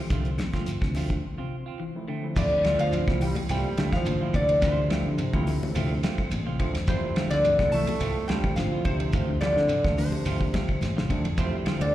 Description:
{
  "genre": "afrobeat",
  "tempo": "106 BPM",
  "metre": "4/4",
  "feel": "straight",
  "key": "D minor",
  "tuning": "A4 = 439 Hz",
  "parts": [
    { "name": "overdriven tine electric piano", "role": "accompaniment", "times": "0.0-11.8 s", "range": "F3 to G4", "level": "-36 LUFS", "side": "right 2 dB", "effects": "slapback echo" },
    { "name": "electric guitar at the edge of break-up", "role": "arpeggios", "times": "0.0-11.9 s", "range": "C3 to F3", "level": "-32 LUFS", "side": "left 4 dB", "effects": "slapback echo" },
    { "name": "semi-hollow electric guitar", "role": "stabs", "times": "0.1-11.8 s", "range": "A3 to F4", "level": "-37 LUFS", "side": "right 8 dB", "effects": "spring reverb, slapback echo" },
    { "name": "fingered electric bass", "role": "bass", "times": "0.1-11.9 s", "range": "A1 to D3", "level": "-29 LUFS", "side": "equal", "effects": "none" },
    { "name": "damped 70s drum kit", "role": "drums", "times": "0.1-11.9 s", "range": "crash cymbal, hi-hat, kick drum, ride cymbal, snare drum", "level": "-30 LUFS", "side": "equal", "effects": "none" },
    { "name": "shekere", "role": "percussion", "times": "0.1-11.8 s", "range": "none", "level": "-38 LUFS", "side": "right 1 dB", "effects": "none" },
    { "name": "claves", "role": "percussion", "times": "0.4-11.8 s", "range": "none", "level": "-43 LUFS", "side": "left 2 dB", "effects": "slapback echo" },
    { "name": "congas", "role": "percussion", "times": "0.4-11.9 s", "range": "none", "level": "-36 LUFS", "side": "left 2 dB", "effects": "none" },
    { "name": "lap resonator guitar", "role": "melody", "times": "2.4-11.9 s", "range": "C5 to A5", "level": "-27 LUFS", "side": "left 1 dB", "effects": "slapback echo" },
    { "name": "clear trombone", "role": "second line", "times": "2.4-11.9 s", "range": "C3 to A3", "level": "-33 LUFS", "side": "right 4 dB", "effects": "slapback echo" }
  ],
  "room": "studio reverb",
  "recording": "live gig heard through the venue's PA, recital hall reverb",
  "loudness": "-23 LUFS",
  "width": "side -13 dB against mid",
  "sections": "0.0-2.4 A section; 2.4-11.9 B section",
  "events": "break 1.2-2.4",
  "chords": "0.0 Dm7"
}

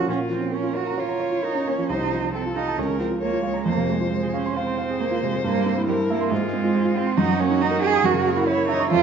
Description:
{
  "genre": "quick classical-period movement for piano trio",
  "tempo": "136 BPM",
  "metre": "4/4",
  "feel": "rubato",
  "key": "Bb minor",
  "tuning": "A4 = 439 Hz",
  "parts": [
    { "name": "muted cello", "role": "second line", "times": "0.0-9.0 s", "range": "G3 to Ab4", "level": "-24 LUFS", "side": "right 8 dB", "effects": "none" },
    { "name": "warm grand piano", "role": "accompaniment", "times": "0.0-9.0 s", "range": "C2 to Eb6", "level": "-24 LUFS", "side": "right 1 dB", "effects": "none" },
    { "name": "muted violin", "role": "melody", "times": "0.1-9.0 s", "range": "F4 to Db5", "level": "-29 LUFS", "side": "left 4 dB", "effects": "none" }
  ],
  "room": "wet recital hall reverb, RT60 1.7 s",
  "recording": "nothing above 7.9 kHz",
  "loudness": "-20 LUFS",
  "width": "side -7 dB against mid",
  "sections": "0.1-9.0 A section",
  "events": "none",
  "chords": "0.1 Bbm; 1.9 F7/C; 2.8 Bbm/Db; 3.7 Fm; 5.4 C7/G; 6.3 Fm/Ab; 7.2 Ebm/Gb; 8.1 Gb7"
}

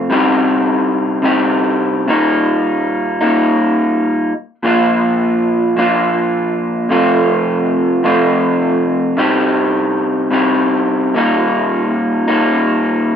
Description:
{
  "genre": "rock",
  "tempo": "106 BPM",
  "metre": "4/4",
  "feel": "straight",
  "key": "Eb lydian",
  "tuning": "A4 = 440 Hz",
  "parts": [
    { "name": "electric guitar through a small old amp", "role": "solo", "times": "0.0-13.2 s", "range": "Eb2 to G4", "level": "-12 LUFS", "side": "equal", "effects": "none" }
  ],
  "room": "moderate small room ambience, RT60 0.5 s",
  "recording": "rough home demo mix",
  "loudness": "-12 LUFS",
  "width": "side -8 dB against mid",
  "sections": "0.0-13.2 A section",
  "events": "none",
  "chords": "0.1 Cm; 2.1 Eb; 4.6 Bb; 6.9 F; 9.2 Cm; 11.1 Eb"
}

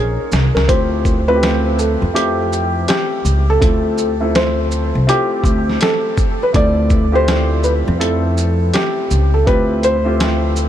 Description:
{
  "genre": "hip hop, jazz-hop",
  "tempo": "82 BPM",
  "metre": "4/4",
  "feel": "swing 64% on 16ths",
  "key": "D minor",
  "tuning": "A4 = 440 Hz",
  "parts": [
    { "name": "felt-muted upright piano", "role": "melody", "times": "0.0-10.7 s", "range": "G4 to D5", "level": "-18 LUFS", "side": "equal", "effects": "analog delay" },
    { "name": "dark upright piano", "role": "accompaniment", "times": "0.0-10.7 s", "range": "A3 to Bb4", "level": "-21 LUFS", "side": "equal", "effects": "lush chorus" },
    { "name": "upright bass", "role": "bass", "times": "0.0-10.7 s", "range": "Bb1 to F2", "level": "-16 LUFS", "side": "equal", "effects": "none" },
    { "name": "lo-fi sampler-style drum kit", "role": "drums", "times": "0.3-10.7 s", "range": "hi-hat, kick drum, shaker, snare drum", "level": "-20 LUFS", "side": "equal", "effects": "none" }
  ],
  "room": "light reverb, small room reverb",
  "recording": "none",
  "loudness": "-13 LUFS",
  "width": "side -11 dB against mid",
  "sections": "0.0-10.7 A section",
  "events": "drum fill 0.0-0.7",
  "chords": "0.0 Bbm11; 0.7 Dm11"
}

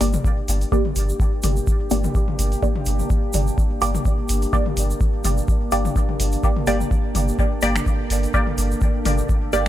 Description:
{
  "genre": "dub techno",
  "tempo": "126 BPM",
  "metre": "4/4",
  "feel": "swing 55% on 16ths",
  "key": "G minor",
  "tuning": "A4 = 443 Hz",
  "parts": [
    { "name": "deep dark ambient pad", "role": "sustained chords", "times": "0.0-9.7 s", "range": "Bb3 to A4", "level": "-28 LUFS", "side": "equal", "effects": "chorus, built-in reverb, sidechain pumping" },
    { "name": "filtered dub chord stab", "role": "stabs", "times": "0.0-9.6 s", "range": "Bb3 to D5", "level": "-25 LUFS", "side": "right 1 dB", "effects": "phaser, sidechain pumping, dub echo" },
    { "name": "warm sub bass", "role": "bass", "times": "0.0-9.7 s", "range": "G1", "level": "-22 LUFS", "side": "equal", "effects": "sidechain pumping" },
    { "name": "booming analog drum machine", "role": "drums", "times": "0.0-9.7 s", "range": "finger snaps, hi-hat", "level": "-31 LUFS", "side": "equal", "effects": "overdrive" },
    { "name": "egg shaker", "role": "percussion", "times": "0.0-9.7 s", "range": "none", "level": "-34 LUFS", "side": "right 3 dB", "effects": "none" },
    { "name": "electronic toms", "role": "percussion", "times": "0.1-9.7 s", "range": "none", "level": "-30 LUFS", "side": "left 4 dB", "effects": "overdrive, sidechain pumping on toms" },
    { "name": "electronic kick drum", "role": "drums", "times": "0.2-9.4 s", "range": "none", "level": "-21 LUFS", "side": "equal", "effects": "overdrive" }
  ],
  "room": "digital ambience",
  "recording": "none",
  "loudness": "-18 LUFS",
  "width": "side -13 dB against mid",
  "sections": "0.0-9.7 A section",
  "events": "none",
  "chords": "0.0 Gm"
}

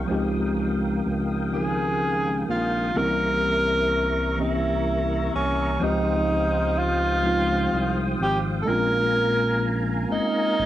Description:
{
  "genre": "slow six-eight R&B",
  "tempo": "42 BPM (dotted quarters)",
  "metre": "6/8",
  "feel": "straight",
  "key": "unclear",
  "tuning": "A4 = 440 Hz",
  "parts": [
    { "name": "mellow tine electric piano", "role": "accompaniment", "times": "0.0-10.7 s", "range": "Db3 to Bb4", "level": "-27 LUFS", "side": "equal", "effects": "medium stereo tremolo, cassette tape" },
    { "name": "tonewheel organ", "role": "sustained chords", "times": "0.0-10.7 s", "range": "Bb4 to Eb6", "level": "-33 LUFS", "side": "left 1 dB", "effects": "chorus vibrato, slow rotary speaker, cassette tape" },
    { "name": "smooth synth bass", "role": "bass", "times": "0.0-10.7 s", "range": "Ab1 to Db2", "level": "-27 LUFS", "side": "equal", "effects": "none" },
    { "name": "warm tenor saxophone", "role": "melody", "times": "1.5-10.7 s", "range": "Db4 to Bb4", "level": "-24 LUFS", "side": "right 1 dB", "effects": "cassette tape" }
  ],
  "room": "light reverb",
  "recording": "home recording on cassette",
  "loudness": "-21 LUFS",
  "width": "side -13 dB against mid",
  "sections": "0.0-5.8 A section; 5.8-10.7 B section",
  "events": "none",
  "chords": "0.1 Dbmaj9#11; 3.0 C7b9; 5.8 Dbmaj9#11; 8.7 Bbm7"
}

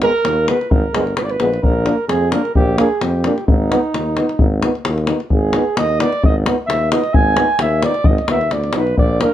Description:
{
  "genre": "balkan folk, Balkan brass band",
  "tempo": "131 BPM",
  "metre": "2/4",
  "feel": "swing 55% on 16ths",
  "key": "Ab hungarian minor",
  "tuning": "A4 = 439 Hz",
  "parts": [
    { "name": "mellow flugelhorn", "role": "melody", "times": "0.0-9.3 s", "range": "Eb4 to Ab5", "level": "-19 LUFS", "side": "right 2 dB", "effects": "plate reverb" },
    { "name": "clear euphonium", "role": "accompaniment", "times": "0.0-9.3 s", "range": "Ab3 to Cb4", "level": "-21 LUFS", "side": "right 3 dB", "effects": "none" },
    { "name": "warm trombone", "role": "accompaniment", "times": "0.0-9.3 s", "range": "Cb4 to Eb4", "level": "-23 LUFS", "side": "left 5 dB", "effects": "none" },
    { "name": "warm tuba", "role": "bass", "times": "0.0-9.2 s", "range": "G1 to F2", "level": "-20 LUFS", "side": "equal", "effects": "none" },
    { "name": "davul", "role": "percussion", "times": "0.0-9.3 s", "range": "none", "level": "-18 LUFS", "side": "left 1 dB", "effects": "none" }
  ],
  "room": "light reverb",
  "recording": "none",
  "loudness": "-14 LUFS",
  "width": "side -11 dB against mid",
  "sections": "0.0-9.3 A section",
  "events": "flugelhorn solo 0.0-9.3",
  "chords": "0.0 Abm; 1.6 Bb; 3.5 Abm"
}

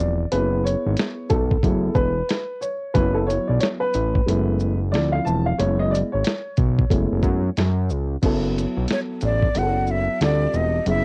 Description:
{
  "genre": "hip hop, jazz-hop",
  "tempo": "91 BPM",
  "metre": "4/4",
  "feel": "swing 63% on 16ths",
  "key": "F# minor",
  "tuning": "A4 = 441 Hz",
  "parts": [
    { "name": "dark upright piano", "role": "accompaniment", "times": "0.0-11.0 s", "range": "E3 to A5", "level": "-26 LUFS", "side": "equal", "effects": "none" },
    { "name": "fat analog bass", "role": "bass", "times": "0.0-11.0 s", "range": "E1 to F#2", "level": "-24 LUFS", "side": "equal", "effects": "none" },
    { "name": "dusty soul sampler-style drum kit", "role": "drums", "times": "0.3-11.0 s", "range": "crash cymbal, hi-hat, kick drum, shaker, snare drum", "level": "-25 LUFS", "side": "equal", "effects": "cassette tape" },
    { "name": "breathy silver concert flute", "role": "melody", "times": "8.9-11.0 s", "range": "C#5 to F#5", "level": "-26 LUFS", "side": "equal", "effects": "cassette tape, tape echo" }
  ],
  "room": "little or no reverb",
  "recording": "home recording on cassette",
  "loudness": "-22 LUFS",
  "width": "mono",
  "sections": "0.0-8.2 A section; 8.2-11.0 B section",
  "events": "upright piano solo 0.0-8.2",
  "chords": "0.3 C#m7/F#; 1.6 F#m11; 3.0 B9sus4/F#; 4.3 F#m11; 4.9 Dm7; 5.6 C#m7/F#; 6.9 F#m11; 8.2 B7sus4/F#; 10.2 Dm7"
}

